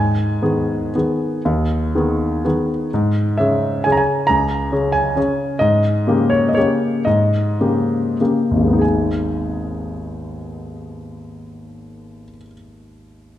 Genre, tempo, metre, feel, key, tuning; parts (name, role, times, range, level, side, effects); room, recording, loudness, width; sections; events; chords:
classical, piano waltz; 90-141 BPM; 3/4; rubato; G# minor; A4 = 442 Hz
clear grand piano; solo; 0.0-13.4 s; G#1 to A#5; -16 LUFS; left 1 dB
moderate scoring stage reverb, RT60 1.8 s; -16 LUFS; side -12 dB against mid
0.0-2.9 A section; 2.9-8.8 B section; 8.8-12.6 C section
slowing down 4.9-8.8
0.0 G#m; 2.9 C#m/G#; 5.6 D#7/G#; 8.8 G#m